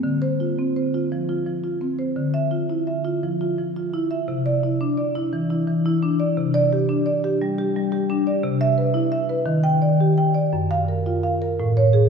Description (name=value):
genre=classical, contemporary piece for solo marimba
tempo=57 BPM (dotted quarters)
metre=6/8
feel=rubato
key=D minor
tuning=A4 = 440 Hz
part: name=marimba with medium mallets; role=solo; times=0.0-12.1 s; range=F#2 to G5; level=-19 LUFS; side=equal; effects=none
room=wet church reverb, RT60 3.2 s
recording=recorded in a church or concert hall, small room ambience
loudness=-19 LUFS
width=side -6 dB against mid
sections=0.0-12.1 A section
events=none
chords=0.0 Dm7; 2.2 Dmadd9; 4.3 Cadd9; 6.4 Csus2; 8.4 Cmaj7; 9.5 D#maj7; 10.5 F#maj7; 11.6 Amaj7